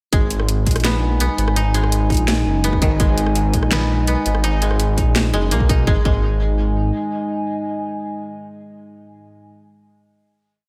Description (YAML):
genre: half-time drum and bass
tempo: 167 BPM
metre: 4/4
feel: half-time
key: G# minor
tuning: A4 = 440 Hz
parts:
  - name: dark analog pad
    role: sustained chords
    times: 0.1-9.5 s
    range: G#3 to G#5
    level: -27 LUFS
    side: equal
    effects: chorus, sidechain pumping
  - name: koto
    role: arpeggios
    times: 0.1-9.0 s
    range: D#3 to D#4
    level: -28 LUFS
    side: equal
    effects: diffuse ambient delay
  - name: dark detuned saw bass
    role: bass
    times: 0.1-6.9 s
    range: F#1 to B1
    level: -21 LUFS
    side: equal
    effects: tube saturation
  - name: drum and bass drum kit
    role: drums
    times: 0.1-5.8 s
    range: hi-hat, rim click, snare drum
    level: -26 LUFS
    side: equal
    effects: overdrive, small room ambience
  - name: electronic kick drum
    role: drums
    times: 0.1-6.2 s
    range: none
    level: -21 LUFS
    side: equal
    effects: small room ambience
room: light reverb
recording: none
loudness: -18 LUFS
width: mono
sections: 0.1-5.9 drop; 5.9-8.7 final chord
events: drop 0.1-5.9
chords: 0.1 G#5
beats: | 0.13 0.48 0.84 1.20 | 1.56 1.92 2.28 2.64 | 3.00 3.36 3.72 4.08 | 4.44 4.80 5.16 5.51 | 5.87 6.23 6.59 6.95 | 7.31 7.67 8.03 8.39